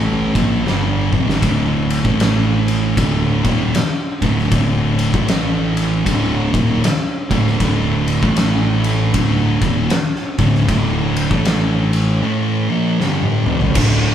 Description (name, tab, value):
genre	stoner and doom metal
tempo	78 BPM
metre	4/4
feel	swing 62% on 8ths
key	D minor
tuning	A4 = 437 Hz
part	thick fuzz guitar	riff	0.0-14.1 s	D2 to Bb3	-20 LUFS	left 6 dB	distortion
part	thick fuzz guitar	riff	0.0-14.1 s	D2 to Bb3	-19 LUFS	right 6 dB	distortion
part	fuzz fingered electric bass	bass	0.0-14.1 s	D1 to Bb1	-23 LUFS	equal	overdrive
part	oversized low-tuned drum kit	drums	0.4-14.0 s	crash cymbal, kick drum, ride cymbal, snare drum, toms	-19 LUFS	left 1 dB	none
room	light reverb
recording	band playing live in one room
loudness	-14 LUFS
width	side -9 dB against mid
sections	0.0-13.8 A section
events	drum fill 0.7-1.4, 13.0-13.8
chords	0.0 Dm; 2.0 A5; 3.0 D5; 5.1 A5; 6.1 D5; 8.2 A5; 9.1 D5; 11.3 A5; 12.2 Dm